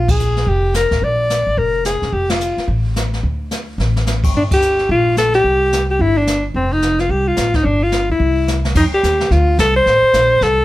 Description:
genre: jazz, small-group swing and bop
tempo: 217 BPM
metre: 4/4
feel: swing 62% on 8ths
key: unclear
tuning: A4 = 439 Hz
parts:
  - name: bright alto saxophone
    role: melody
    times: 0.0-10.6 s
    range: C4 to D5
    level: -15 LUFS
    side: left 1 dB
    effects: none
  - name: upright bass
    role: bass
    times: 0.0-10.6 s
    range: E1 to F2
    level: -18 LUFS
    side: equal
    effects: none
  - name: jazz brush drum kit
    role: drums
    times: 0.1-10.6 s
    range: brushed snare drum, crash cymbal, hi-hat, kick drum, ride cymbal, snare drum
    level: -21 LUFS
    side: equal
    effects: none
room: light reverb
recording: none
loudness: -13 LUFS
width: side -16 dB against mid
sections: 0.0-8.8 A section; 8.8-10.6 A section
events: band accent 0.0, 2.3, 4.5; drum fill 3.8, 8.5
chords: 0.0 Bb7; 2.1 F; 3.2 D5; 4.3 Gm7; 5.4 C5; 6.5 F7; 7.7 Dmadd11/G; 8.2 C; 8.8 F7

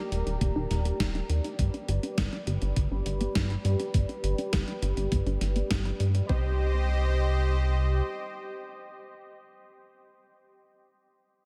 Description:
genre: synthwave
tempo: 102 BPM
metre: 4/4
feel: straight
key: C minor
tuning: A4 = 437 Hz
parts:
  - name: soft supersaw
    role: sustained chords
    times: 0.0-9.4 s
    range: G4 to B5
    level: -37 LUFS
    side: equal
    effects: lush chorus, sidechain pumping, low-pass filter
  - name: unison pluck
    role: arpeggios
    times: 0.0-6.6 s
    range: Bb3 to B5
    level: -41 LUFS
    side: equal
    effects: analog delay
  - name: chorused synth bass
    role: bass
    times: 0.1-8.0 s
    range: Eb1 to G2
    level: -29 LUFS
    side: equal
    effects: tube saturation
  - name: gated 80s digital drum machine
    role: drums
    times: 0.1-6.3 s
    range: hi-hat, snare drum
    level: -38 LUFS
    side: equal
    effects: gated reverb, gated reverb snare
  - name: electronic kick drum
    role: drums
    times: 0.4-6.4 s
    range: none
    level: -31 LUFS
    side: equal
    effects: none
room: moderate cathedral reverb, RT60 6.0 s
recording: dreamy mix soaked in reverb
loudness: -28 LUFS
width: mono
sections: 0.0-6.3 A section; 6.3-8.6 B section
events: none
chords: 0.0 Eb; 1.6 G; 6.3 Cm

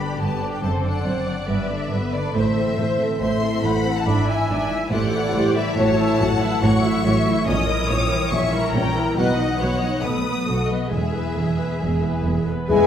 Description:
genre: classical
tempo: 140 BPM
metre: 4/4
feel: straight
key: E major from 5.8 s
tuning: A4 = 440 Hz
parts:
  - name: clear symphonic violin section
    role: melody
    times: 0.0-12.9 s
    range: D5 to D#6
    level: -28 LUFS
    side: left 4 dB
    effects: none
  - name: rich studio violin section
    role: second line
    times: 0.0-12.9 s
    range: F#4 to G#5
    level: -28 LUFS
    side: left 2 dB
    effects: none
  - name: rich symphonic viola section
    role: accompaniment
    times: 0.0-12.9 s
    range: G#3 to E5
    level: -26 LUFS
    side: right 1 dB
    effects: none
  - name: concert harp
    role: arpeggios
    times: 0.0-12.9 s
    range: F#2 to D4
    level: -27 LUFS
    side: left 4 dB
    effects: none
  - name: clear studio double bass section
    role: bass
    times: 0.0-12.9 s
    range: E1 to E2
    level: -26 LUFS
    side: right 2 dB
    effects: none
  - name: clear symphonic cello section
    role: bass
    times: 0.0-12.9 s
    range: E2 to G#3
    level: -24 LUFS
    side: right 2 dB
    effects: none
  - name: dark clarinet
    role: second line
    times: 12.7-12.9 s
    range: none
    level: barely audible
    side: none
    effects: none
  - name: mellow hollow concert flute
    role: second line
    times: 12.7-12.9 s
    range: B5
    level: -33 LUFS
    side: right 1 dB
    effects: none
  - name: warm oboe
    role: second line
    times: 12.7-12.9 s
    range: E5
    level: -32 LUFS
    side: left 1 dB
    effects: none
  - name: mellow bassoon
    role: accompaniment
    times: 12.7-12.9 s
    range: E3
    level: -28 LUFS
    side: equal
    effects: none
  - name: mellow trombone section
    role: sustained chords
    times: 12.7-12.9 s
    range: E3 to B3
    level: -27 LUFS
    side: left 1 dB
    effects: none
  - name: warm French horn section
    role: sustained chords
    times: 12.7-12.9 s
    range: G#4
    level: -14 LUFS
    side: left 7 dB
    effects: none
  - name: timpani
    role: percussion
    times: 12.7-12.9 s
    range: E2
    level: -23 LUFS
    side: equal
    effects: none
room: wet recital hall reverb, RT60 1.2 s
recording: heard from further back in the room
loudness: -18 LUFS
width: side -9 dB against mid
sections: 0.0-12.7 A section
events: none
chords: 0.0 G; 0.6 D7/F#; 1.5 G; 2.4 Am; 4.1 E7/G#; 4.9 Am7; 5.8 F#m7/A; 7.5 A#dim7; 9.2 B; 10.0 B7; 10.9 E

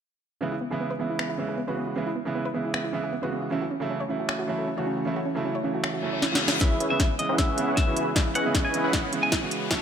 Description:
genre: future bass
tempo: 155 BPM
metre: 4/4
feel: half-time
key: C# minor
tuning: A4 = 440 Hz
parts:
  - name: clear concert grand piano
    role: accompaniment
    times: 0.4-9.8 s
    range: C#3 to F#4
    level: -29 LUFS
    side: right 3 dB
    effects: sidechain pumping, ping-pong delay
  - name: soft round pluck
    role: arpeggios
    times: 0.4-6.6 s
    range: B3 to C#5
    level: -33 LUFS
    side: right 1 dB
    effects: chorus, sidechain pumping, ping-pong delay
  - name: trap drum kit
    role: drums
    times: 1.2-9.8 s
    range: finger snaps, hi-hat, snare drum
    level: -28 LUFS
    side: equal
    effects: small room ambience
  - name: airy breathy pad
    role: sustained chords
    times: 3.5-9.8 s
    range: E3 to C#5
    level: -35 LUFS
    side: equal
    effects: chorus, sidechain pumping
  - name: reverse cymbal and riser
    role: sound effects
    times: 6.0-9.8 s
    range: none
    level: -34 LUFS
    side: left 4 dB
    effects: none
  - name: clean electric guitar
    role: melody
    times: 6.6-9.8 s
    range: C#5 to G#5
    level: -30 LUFS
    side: left 1 dB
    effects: phaser, sidechain pumping, dub echo
  - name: supersaw chords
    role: riff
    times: 6.6-9.8 s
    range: C#4 to F#5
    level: -28 LUFS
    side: equal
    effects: sidechain pumping, low-pass filter
  - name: electronic kick drum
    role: drums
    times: 6.6-9.8 s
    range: none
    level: -26 LUFS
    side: left 1 dB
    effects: small room ambience
room: light reverb, digital ambience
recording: high-pass filter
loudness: -24 LUFS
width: side -8 dB against mid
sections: 0.4-6.6 A section; 6.6-9.8 B section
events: reverse cymbal 6.0-6.6; drum fill 6.2-6.6, 6.6-9.8; build-up 6.6-9.8; filter sweep on supersaw synth 6.6-9.8; filter sweep 6.6-9.8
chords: 0.4 C#m7; 3.5 F#m7; 6.4 C#m7

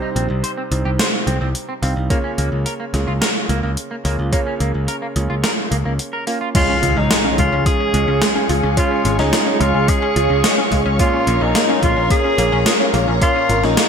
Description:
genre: synthwave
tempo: 108 BPM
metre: 4/4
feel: straight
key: unclear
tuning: A4 = 439 Hz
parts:
  - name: semi-hollow electric guitar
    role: riff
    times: 0.0-6.5 s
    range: Bb3 to C5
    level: -27 LUFS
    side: right 1 dB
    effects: wide subtle chorus, ping-pong delay
  - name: warm electric grand piano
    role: stabs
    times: 0.0-13.9 s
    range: Bb2 to F5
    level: -25 LUFS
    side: right 3 dB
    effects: ping-pong delay
  - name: modern bright picked electric bass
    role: bass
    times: 0.2-13.8 s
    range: Ab1 to Db2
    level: -19 LUFS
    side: equal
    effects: sidechain pumping
  - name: gated 80s digital drum machine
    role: drums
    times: 0.2-13.9 s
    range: crash cymbal, hi-hat, snare drum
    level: -20 LUFS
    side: equal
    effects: gated reverb, gated reverb snare, overdrive
  - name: electronic kick drum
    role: drums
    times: 2.1-13.3 s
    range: none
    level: -19 LUFS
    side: equal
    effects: overdrive
  - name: string machine, full ensemble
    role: sustained chords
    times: 6.5-13.9 s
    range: Ab4 to Db6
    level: -21 LUFS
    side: equal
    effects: ensemble chorus, sidechain pumping
  - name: analog pluck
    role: arpeggios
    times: 6.5-13.9 s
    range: Ab3 to F4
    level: -24 LUFS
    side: left 3 dB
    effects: chorus, cassette tape, ping-pong delay
  - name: impact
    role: sound effects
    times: 6.5-8.8 s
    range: none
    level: -27 LUFS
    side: equal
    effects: none
  - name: breathy tenor saxophone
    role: melody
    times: 6.6-13.9 s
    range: Eb4 to Ab4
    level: -19 LUFS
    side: equal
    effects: ping-pong delay
room: moderate plate reverb, RT60 2.1 s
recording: bright 1980s-style digital production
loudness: -15 LUFS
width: side -6 dB against mid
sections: 0.0-6.5 A section; 6.5-13.9 B section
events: break 6.0-6.5; impact 6.5-8.8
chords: 0.0 Cm; 2.1 Bbm/Db; 6.5 Db; 11.0 Bbm

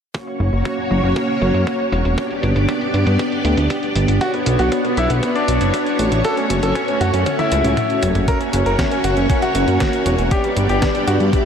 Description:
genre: italo disco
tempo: 118 BPM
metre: 4/4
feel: straight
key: unclear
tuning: A4 = 440 Hz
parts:
  - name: string machine, full ensemble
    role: sustained chords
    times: 0.1-11.5 s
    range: A3 to D5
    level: -20 LUFS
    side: equal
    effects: ensemble chorus, vintage 12-bit sampler grit
  - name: detuned 8-bit digital drum machine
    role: drums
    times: 0.1-11.4 s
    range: hi-hat, snare drum, toms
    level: -27 LUFS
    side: equal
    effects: low-pass filter on hats, low-pass filter on toms, low-pass filter on snare, low-pass filter on room
  - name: electronic kick drum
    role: drums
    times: 0.1-11.4 s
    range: none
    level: -21 LUFS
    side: equal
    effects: high-pass filter on kick, high-pass filter on room
  - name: fat analog bass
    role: bass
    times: 0.4-11.3 s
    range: E1 to G2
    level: -19 LUFS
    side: equal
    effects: none
  - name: bright concert grand piano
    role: melody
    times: 4.2-11.4 s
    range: G3 to A#4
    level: -20 LUFS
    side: left 1 dB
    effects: analog delay
  - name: mellow synth brass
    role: stabs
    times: 4.2-11.5 s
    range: C#4 to E5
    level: -25 LUFS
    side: left 2 dB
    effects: chorus
room: moderate huge ambient reverb, RT60 8.0 s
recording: dreamy mix soaked in reverb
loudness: -15 LUFS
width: side -7 dB against mid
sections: 0.1-8.3 A section; 8.3-11.5 B section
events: filter sweep on drum 0.1-8.3; filter sweep on analog synth bass 0.1-8.3; drum fill 7.3-8.3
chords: 0.1 F#; 2.2 G; 4.2 Bmadd9; 6.2 F#m; 8.3 F#; 10.3 G

